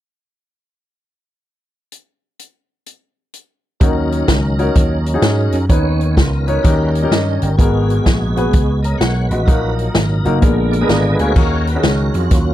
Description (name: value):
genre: uptempo gospel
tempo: 127 BPM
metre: 4/4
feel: swing 65% on 8ths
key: Eb minor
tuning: A4 = 440 Hz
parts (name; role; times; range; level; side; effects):
- swinging big-band drum kit; drums; 1.9-12.4 s; crash cymbal, hi-hat, kick drum, snare drum; -15 LUFS; equal; none
- warm baby grand piano; accompaniment; 3.8-12.3 s; Ab2 to Bb5; -19 LUFS; left 2 dB; none
- tonewheel organ; sustained chords; 3.8-12.5 s; D3 to Gb5; -22 LUFS; right 2 dB; slow rotary speaker, chorus vibrato
- vintage slap bass; bass; 3.8-12.5 s; Gb1 to Ab2; -17 LUFS; equal; none
room: little or no reverb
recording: dry, close 1970s-style studio recording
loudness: -13 LUFS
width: side -13 dB against mid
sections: 1.9-3.8 A section; 3.8-11.4 B section; 11.4-12.5 C section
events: grand piano fill 10.6-11.4; tonewheel organ solo 11.4-12.5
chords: 1.9 N.C.; 3.8 Ebm7; 5.7 Bmaj9/D#; 6.6 Eb7; 7.6 Abm9; 9.5 Ebm/Bb; 10.4 Bb7b9; 11.4 Ebm7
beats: | 1.92 2.39 2.86 3.34 | 3.81 4.28 4.75 5.22 | 5.70 6.17 6.64 7.11 | 7.58 8.05 8.52 9.00 | 9.47 9.94 10.41 10.88 | 11.36 11.83 12.30